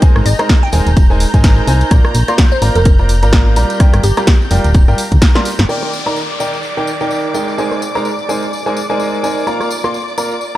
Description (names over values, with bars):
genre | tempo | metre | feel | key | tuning
piano house | 127 BPM | 4/4 | swing 58% on 16ths | Eb major | A4 = 441 Hz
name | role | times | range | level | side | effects
warm studio string section | sustained chords | 0.0-10.6 s | D5 to G6 | -23 LUFS | equal | vintage 12-bit sampler grit, sidechain pumping
clear grand piano | riff | 0.0-10.6 s | Eb3 to C6 | -18 LUFS | right 1 dB | sidechain pumping, dub echo
electronic kick drum | drums | 0.0-5.3 s | none | -9 LUFS | equal | none
punchy analog drum machine | drums | 0.0-9.9 s | hi-hat, rim click, snare drum | -20 LUFS | equal | low-pass filter on hats, low-pass filter on snare
tambourine | percussion | 0.0-10.6 s | none | -30 LUFS | left 3 dB | none
solid FM bass | bass | 0.2-5.7 s | D1 to D2 | -12 LUFS | equal | sidechain pumping
glassy wavetable pluck | melody | 0.3-4.2 s | G4 to G5 | -22 LUFS | equal | chorus, dub echo
downlifter | sound effects | 5.7-9.5 s | none | -26 LUFS | left 1 dB | none
room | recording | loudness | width
light reverb | dark, warm production | -11 LUFS | side -15 dB against mid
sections
0.0-5.7 A section; 5.7-10.6 B section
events
drum fill 5.3-5.7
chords
0.0 Abadd9; 1.9 Bb; 3.8 Gm7; 5.7 Ebmaj7; 7.6 Abadd9; 9.5 Gm7 (rootless)